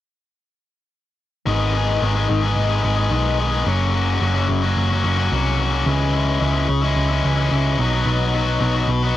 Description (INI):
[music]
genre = rock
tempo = 109 BPM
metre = 4/4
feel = straight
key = G# minor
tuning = A4 = 440 Hz
[part]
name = overdriven electric guitar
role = riff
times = 1.5-9.2 s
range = F#2 to G#4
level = -20 LUFS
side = left 5 dB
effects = none
[part]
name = hollow-body short-scale picked electric bass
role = bass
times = 1.5-9.1 s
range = F#1 to C#2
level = -20 LUFS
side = right 2 dB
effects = none
[sound]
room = little or no reverb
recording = dry, close 1970s-style studio recording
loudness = -17 LUFS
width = side -13 dB against mid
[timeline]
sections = 1.5-9.2 A section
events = none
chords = 1.5 G#m; 3.7 F#; 5.9 C#m; 7.8 B